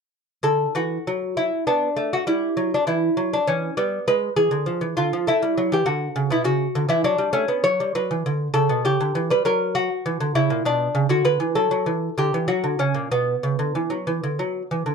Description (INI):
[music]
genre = classical, baroque-style dance for lute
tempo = 99 BPM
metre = 3/4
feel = rubato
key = D major, B minor from 7.6 s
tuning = A4 = 439 Hz
[part]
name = lute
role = solo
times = 0.4-14.9 s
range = A#2 to C#5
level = -20 LUFS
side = equal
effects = none
[sound]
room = moderate small room reverb, RT60 0.5 s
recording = dark, warm production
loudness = -20 LUFS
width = side -5 dB against mid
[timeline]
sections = 0.4-14.9 A section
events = none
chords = 0.4 D; 1.7 Bm; 2.3 Em; 4.1 Ddim7; 5.3 A5; 5.9 D; 8.8 C#dim; 9.4 F#7; 10.6 Bm; 11.3 Bm/D; 11.9 Em; 12.5 F#; 13.1 Bm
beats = | 0.43 1.04 1.65 | 2.25 2.85 3.46 | 4.06 4.65 5.26 | 5.85 6.45 7.04 | 7.65 8.25 8.85 | 9.45 10.04 10.65 | 11.25 11.86 12.48 | 13.11 13.74 14.38